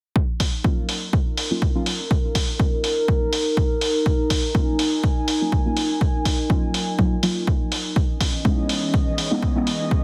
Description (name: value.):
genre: deep house.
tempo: 123 BPM.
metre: 4/4.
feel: swing 54% on 16ths.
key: Eb minor.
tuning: A4 = 436 Hz.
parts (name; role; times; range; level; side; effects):
electronic kick drum; drums; 0.2-10.0 s; none; -23 LUFS; equal; none.
warbly tape-like pad; texture; 0.9-10.0 s; Db4 to Ab5; -28 LUFS; equal; chorus, built-in reverb, sidechain pumping.
electronic hi-hat; drums; 0.4-9.8 s; none; -29 LUFS; equal; none.
deep mellow chord stab; stabs; 0.6-9.7 s; Gb3 to F4; -29 LUFS; equal; chorus, phaser, sidechain pumping, delay.
airy breathy pad; sustained chords; 8.0-10.0 s; Fb3 to Eb5; -32 LUFS; equal; chorus, sidechain pumping.
room: light reverb.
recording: heavily compressed radio sound, multiband compression.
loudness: -22 LUFS.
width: mono.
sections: 0.2-10.0 A section.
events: none.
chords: 0.2 Ebm9; 8.0 Dbm9.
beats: | 0.16 0.64 1.13 1.62 | 2.11 2.60 3.08 3.57 | 4.06 4.55 5.03 5.52 | 6.01 6.50 6.99 7.47 | 7.96 8.45 8.94 9.43 | 9.91.